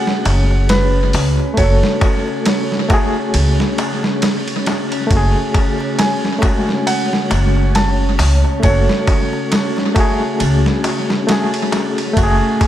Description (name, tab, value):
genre	trip hop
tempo	68 BPM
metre	4/4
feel	swing 57% on 16ths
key	F# minor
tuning	A4 = 442 Hz
part	felt-muted upright piano	melody	0.0-10.4 s	B4 to A5	-23 LUFS	right 2 dB	tape echo
part	overdriven reed electric piano	accompaniment	0.0-12.7 s	G#3 to A4	-20 LUFS	left 2 dB	fast tremolo, tape echo
part	string machine, cellos	sustained chords	0.0-12.7 s	A3 to G#5	-23 LUFS	equal	ensemble chorus
part	dusty soul sampler-style drum kit	drums	0.1-12.7 s	hi-hat, kick drum, ride cymbal, snare drum	-18 LUFS	equal	overdrive, tape echo
part	upright bass	bass	0.3-12.4 s	F#1 to C#2	-15 LUFS	equal	none
part	darbuka	percussion	0.3-12.7 s	none	-27 LUFS	left 2 dB	none
room	light reverb, digital ambience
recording	echo-heavy mix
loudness	-13 LUFS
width	side -12 dB against mid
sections	0.0-12.7 A section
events	none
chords	0.0 F#madd9